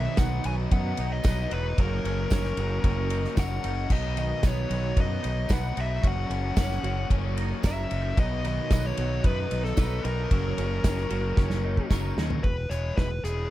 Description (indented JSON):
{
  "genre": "indie rock",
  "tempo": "113 BPM",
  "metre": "4/4",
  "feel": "straight",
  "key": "unclear",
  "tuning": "A4 = 440 Hz",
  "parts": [
    { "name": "dark smooth lead guitar", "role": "melody", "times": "0.0-13.5 s", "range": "G#4 to G#5", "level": "-33 LUFS", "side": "left 2 dB", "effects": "overdrive, tape echo" },
    { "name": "raw garage guitar", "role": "riff", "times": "0.0-13.5 s", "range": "F#2 to G#4", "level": "-35 LUFS", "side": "left 6 dB", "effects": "overdrive" },
    { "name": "twelve-string electric guitar", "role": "riff", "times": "0.0-12.4 s", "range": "B2 to B4", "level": "-35 LUFS", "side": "right 7 dB", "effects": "ensemble chorus" },
    { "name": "growling fingered electric bass", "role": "bass", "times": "0.0-13.5 s", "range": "E1 to F#2", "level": "-29 LUFS", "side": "equal", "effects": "overdrive" },
    { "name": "loose indie drum kit", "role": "drums", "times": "0.2-13.4 s", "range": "crash cymbal, hi-hat, kick drum, ride cymbal, snare drum, toms", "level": "-28 LUFS", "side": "equal", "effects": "none" },
    { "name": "tambourine", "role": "percussion", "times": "0.2-12.0 s", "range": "none", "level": "-45 LUFS", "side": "right 12 dB", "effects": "none" }
  ],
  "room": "little or no reverb",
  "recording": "none",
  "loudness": "-24 LUFS",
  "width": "side -15 dB against mid",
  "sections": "0.0-12.4 A section; 12.4-13.5 B section",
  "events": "drum fill 11.4-12.4",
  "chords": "0.0 B; 1.8 F#6; 3.9 B; 6.0 F#6; 8.2 B; 10.3 F#6; 12.4 E",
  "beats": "0.18 0.71 1.24 | 1.78 2.31 2.84 3.37 | 3.90 4.44 4.97 5.50 | 6.04 6.57 7.10 7.63 | 8.17 8.70 9.23 9.77 | 10.30 10.84 11.37 11.91 | 12.44 12.98"
}